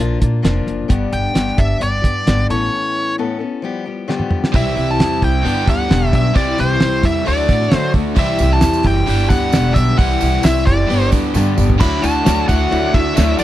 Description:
folk rock and heartland rock; 132 BPM; 4/4; straight; D mixolydian from 4.5 s; A4 = 440 Hz
picked steel-string acoustic guitar; accompaniment; 0.0-13.4 s; G2 to A4; -21 LUFS; left 5 dB
upright bass; bass; 0.0-13.4 s; E1 to D3; -18 LUFS; equal
cloth-damped thuddy drum kit; drums; 0.2-13.4 s; crash cymbal, hi-hat, kick drum, ride cymbal, snare drum, toms; -16 LUFS; right 1 dB
nasal lead guitar with a parked wah; melody; 1.1-13.4 s; C5 to B5; -20 LUFS; equal; overdrive
overdriven electric guitar; riff; 4.5-13.4 s; G2 to G4; -21 LUFS; right 2 dB
mellow tonewheel organ; sustained chords; 8.1-13.4 s; F#4 to D6; -30 LUFS; right 3 dB
tambourine; percussion; 8.4-13.4 s; -34 LUFS; right 22 dB
little or no reverb; dry, close 1970s-style studio recording; -13 LUFS; side -13 dB against mid
0.0-4.5 A section; 4.5-11.8 B section; 11.8-13.4 C section
break 2.7-4.5; drum fill 4.1-4.5, 11.3-11.8
0.0 Bb; 0.9 G; 2.5 Aadd9; 3.6 G7; 4.5 C; 5.4 G; 6.4 C; 7.3 D; 8.2 C; 9.1 G; 10.0 C; 10.9 G; 11.8 Dadd9
0.43 | 0.89 1.35 1.80 2.26 | 2.71 3.17 3.63 4.08 | 4.54 4.99 5.45 5.90 | 6.36 6.81 7.26 7.72 | 8.17 8.63 9.08 9.53 | 9.99 10.44 10.89 11.34 | 11.80 12.25 12.70 13.15

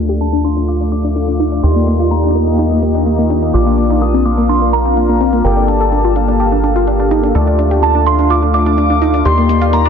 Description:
progressive house; 126 BPM; 4/4; straight; A4 = 442 Hz
evolving wavetable pad; sustained chords; 0.0-9.9 s; Eb3 to A4; -20 LUFS; right 1 dB; chorus, built-in reverb
analog pluck; arpeggios; 0.0-9.9 s; Bb3 to Bb4; -17 LUFS; left 1 dB; chorus, tape echo
soft supersaw; stabs; 0.0-9.9 s; A3 to F5; -18 LUFS; left 3 dB; vintage 12-bit sampler grit, low-pass filter, tape echo
tight sequencer bass; bass; 0.0-9.9 s; G1 to Eb2; -16 LUFS; equal
electronic hi-hat and cabasa; drums; 0.1-9.9 s; -41 LUFS; left 3 dB; studio reverb
glassy synth bell; melody; 0.2-9.9 s; G5 to Eb6; -20 LUFS; right 2 dB; chorus, phaser, tape echo
clear chamber violin section; second line; 0.2-9.9 s; G5 to Eb6; -28 LUFS; left 2 dB; tape echo
light reverb, digital ambience; dense, heavily limited modern master, low-pass filter; -11 LUFS; side -7 dB against mid
0.0-9.9 A section
filter sweep on synth pluck 0.0-9.9; filter sweep on supersaw synth 0.0-9.9; filter sweep 0.0-9.9
0.0 Dm; 1.6 Ebmaj7; 3.5 Bb; 5.4 Gmadd9; 7.3 Dm; 9.3 Ebmaj7
0.21 0.68 1.16 | 1.64 2.11 2.59 3.06 | 3.54 4.02 4.49 4.97 | 5.45 5.92 6.40 6.87 | 7.35 7.83 8.30 8.78 | 9.25 9.73

